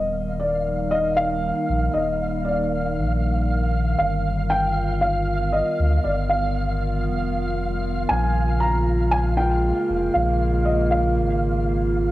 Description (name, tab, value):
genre	IDM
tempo	117 BPM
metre	4/4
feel	swing 62% on 16ths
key	Eb major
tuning	A4 = 440 Hz
part	felt-muted upright piano	melody	0.0-11.4 s	D5 to Bb5	-24 LUFS	equal	vintage 12-bit sampler grit, cassette tape, tape echo
part	warbly tape-like pad	sustained chords	0.0-12.1 s	Db3 to Bb4	-26 LUFS	equal	chorus, built-in reverb, vintage 12-bit sampler grit, cassette tape
part	warm sub bass	bass	0.0-12.1 s	Eb1 to D2	-24 LUFS	equal	none
part	flickering grainy texture	texture	0.1-12.1 s	F5	-31 LUFS	right 1 dB	built-in reverb, cassette tape
room	light reverb, digital ambience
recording	home recording on cassette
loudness	-19 LUFS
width	side -16 dB against mid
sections	0.0-12.1 A section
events	none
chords	0.0 Ebmaj7; 4.0 G7; 8.1 Bbm7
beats	0.41 0.92 1.44 | 1.95 2.46 2.98 3.49 | 4.00 4.51 5.03 5.54 | 6.05 6.57 7.08 7.59 | 8.10 8.62 9.13 9.64 | 10.15 10.67 11.18 11.69